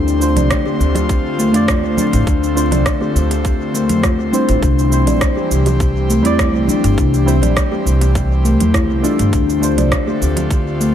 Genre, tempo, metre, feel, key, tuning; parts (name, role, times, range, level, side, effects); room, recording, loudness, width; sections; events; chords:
organic downtempo; 102 BPM; 4/4; straight; D minor; A4 = 440 Hz
deep mellow chord stab; accompaniment; 0.0-10.9 s; G3 to D5; -22 LUFS; right 2 dB; wide subtle chorus, sidechain pumping, dub echo
airy breathy pad; sustained chords; 0.0-10.9 s; D3 to C5; -22 LUFS; equal; chorus, sidechain pumping
steel tongue drum; arpeggios; 0.0-10.9 s; A3 to D5; -18 LUFS; left 4 dB; dub echo
upright bass; bass; 0.0-10.9 s; G1 to F2; -17 LUFS; equal
organic electronic drum kit; drums; 0.1-10.9 s; hi-hat, rim click, shaker; -23 LUFS; right 2 dB; overdrive
congas and bongos; percussion; 0.4-10.5 s; -26 LUFS; right 5 dB
electronic kick drum; drums; 0.5-10.6 s; -18 LUFS; equal; overdrive
light reverb; echo-heavy mix; -12 LUFS; side -10 dB against mid
0.0-10.9 A section
0.0 Dm7; 4.6 C; 9.3 Dm7